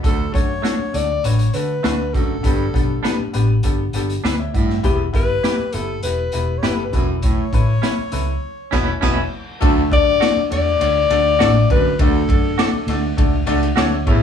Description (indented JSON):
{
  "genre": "uptempo 1960s-style soul",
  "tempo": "100 BPM",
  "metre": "4/4",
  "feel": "straight",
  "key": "D major",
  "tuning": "A4 = 441 Hz",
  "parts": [
    { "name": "clear grand piano", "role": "accompaniment", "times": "0.0-14.2 s", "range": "G2 to G5", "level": "-23 LUFS", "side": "left 3 dB", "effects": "none" },
    { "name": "breathy baritone saxophone", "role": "riff", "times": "0.0-14.2 s", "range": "D2 to B2", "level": "-24 LUFS", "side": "right 6 dB", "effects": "none" },
    { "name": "vintage muted fingered electric bass", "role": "bass", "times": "0.0-14.2 s", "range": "E1 to D3", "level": "-22 LUFS", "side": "equal", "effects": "none" },
    { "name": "raw garage drum kit", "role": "drums", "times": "0.0-14.2 s", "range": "crash cymbal, hi-hat, kick drum, ride cymbal, snare drum", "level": "-20 LUFS", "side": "equal", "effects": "none" },
    { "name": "warm alto saxophone", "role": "melody", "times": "0.1-13.2 s", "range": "G4 to D5", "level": "-21 LUFS", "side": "left 5 dB", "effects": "none" },
    { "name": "clean electric guitar", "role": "stabs", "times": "0.6-13.9 s", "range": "A3 to D5", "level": "-24 LUFS", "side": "right 5 dB", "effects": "tremolo" },
    { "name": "dark horn section", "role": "second line", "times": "9.6-10.0 s", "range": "A3 to A4", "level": "-25 LUFS", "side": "left 4 dB", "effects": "none" }
  ],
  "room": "moderate small room reverb, RT60 0.6 s",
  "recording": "band playing live in one room, small room reverb",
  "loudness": "-16 LUFS",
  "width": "side -8 dB against mid",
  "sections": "0.0-9.6 A section; 9.6-14.2 B section",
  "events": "grand piano fill 3.9-4.8; band accent 8.4-9.6",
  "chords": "0.0 D; 2.4 Gadd9; 4.8 Em; 6.9 Aadd9/E; 9.6 D"
}